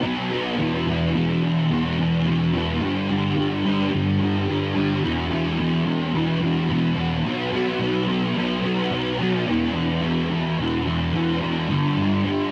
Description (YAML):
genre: rock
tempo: 108 BPM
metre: 4/4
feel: straight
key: unclear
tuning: A4 = 442 Hz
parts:
  - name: thick fuzz guitar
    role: solo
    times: 0.0-12.5 s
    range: E2 to B3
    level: -22 LUFS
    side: equal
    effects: distortion, ensemble chorus, cassette tape
room: light reverb, digital ambience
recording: home recording on cassette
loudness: -22 LUFS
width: mono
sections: 0.0-12.5 A section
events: none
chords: 0.0 B5; 0.6 E5; 2.8 G5; 5.0 E5; 7.2 B5; 9.5 E5; 11.7 G5